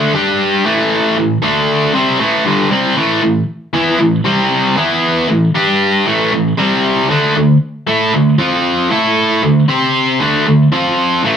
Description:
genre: rock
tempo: 116 BPM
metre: 4/4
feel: straight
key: A minor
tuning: A4 = 441 Hz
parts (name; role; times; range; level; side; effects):
- overdriven electric guitar; solo; 0.0-11.4 s; G2 to C5; -11 LUFS; equal; none
room: moderate studio reverb, RT60 0.8 s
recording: band playing live in one room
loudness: -11 LUFS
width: side -8 dB against mid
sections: 0.0-3.0 A section; 3.0-11.4 B section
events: none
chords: 0.1 G5; 0.6 A5; 1.4 D5; 1.9 Am; 3.0 A5; 4.3 C5; 4.8 E5; 5.3 A5; 5.5 G5; 6.1 A5; 6.6 C5; 7.1 D5; 8.4 F5; 8.9 A5; 9.4 D5; 9.7 C5; 10.2 D5; 10.7 F5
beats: 0.39 | 0.90 1.42 1.93 2.45 | 2.96 3.48 4.00 4.51 | 5.03 5.55 6.06 6.58 | 7.10 7.62 8.13 8.65 | 9.17 9.69 10.21 10.72 | 11.24

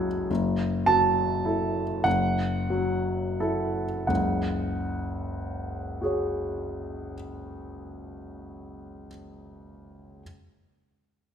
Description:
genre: classical, impressionist solo piano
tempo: 27-36 BPM (dotted quarters)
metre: 6/8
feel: rubato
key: F# minor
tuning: A4 = 439 Hz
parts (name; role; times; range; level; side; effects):
- clear grand piano; solo; 0.0-10.2 s; F#1 to G#6; -26 LUFS; equal; none
room: moderate recital hall reverb, RT60 1.6 s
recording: none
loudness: -24 LUFS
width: side -8 dB against mid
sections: 0.3-4.1 A section; 4.1-8.0 B section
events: slowing down 0.0-4.1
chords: 0.3 F#m7; 4.1 F#sus2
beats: | 0.29 2.04 | 4.08 6.01

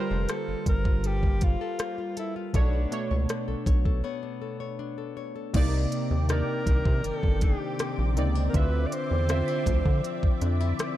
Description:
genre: contemporary R&B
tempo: 80 BPM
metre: 4/4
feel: straight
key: unclear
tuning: A4 = 440 Hz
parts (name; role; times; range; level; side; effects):
- warm alto saxophone; melody; 0.0-10.4 s; D4 to D5; -33 LUFS; equal; tape echo
- warm analog keys; accompaniment; 0.0-11.0 s; B2 to E5; -33 LUFS; right 2 dB; chorus
- nylon-string guitar; arpeggios; 0.0-11.0 s; C3 to C#5; -36 LUFS; left 9 dB; tape echo
- rubbery square bass; bass; 0.1-10.7 s; F1 to D3; -26 LUFS; equal; none
- smooth R&B drum kit; drums; 0.3-11.0 s; crash cymbal, hi-hat, kick drum, rim click; -26 LUFS; equal; none
- lush unison pad; sustained chords; 6.0-11.0 s; C4 to D6; -36 LUFS; left 1 dB; chorus, phaser, sidechain pumping
room: digital ambience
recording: dark, warm production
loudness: -24 LUFS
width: side -14 dB against mid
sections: 0.0-5.5 A section; 5.5-11.0 B section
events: break 4.0-5.5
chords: 0.0 Gm9; 2.5 Bm9; 5.5 Cm9; 8.5 Dm9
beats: 0.29 1.04 1.79 | 2.54 3.29 4.04 4.79 | 5.54 6.29 7.04 7.79 | 8.54 9.29 10.04 10.79

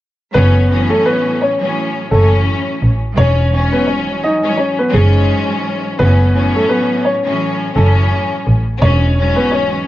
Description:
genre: hip hop, boom-bap hip-hop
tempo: 85 BPM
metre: 4/4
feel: swing 57% on 16ths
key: F# minor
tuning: A4 = 443 Hz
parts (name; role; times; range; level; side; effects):
- warm upright piano; melody; 0.3-9.8 s; G#3 to D#5; -16 LUFS; equal; high-pass filter, low-pass filter
- warm studio string section; accompaniment; 0.3-9.9 s; G#2 to C#4; -18 LUFS; left 1 dB; high-pass filter, low-pass filter
- rich double bass; bass; 0.3-9.3 s; E1 to A1; -13 LUFS; equal; none
room: small room reverb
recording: none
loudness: -12 LUFS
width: side -15 dB against mid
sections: 0.3-9.9 A section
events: none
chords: 0.3 F#m7; 3.2 E69; 6.0 F#m7; 8.8 E69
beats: | 0.34 1.05 1.75 2.46 | 3.16 3.87 4.58 5.28 | 5.99 6.69 7.40 8.11 | 8.81 9.52

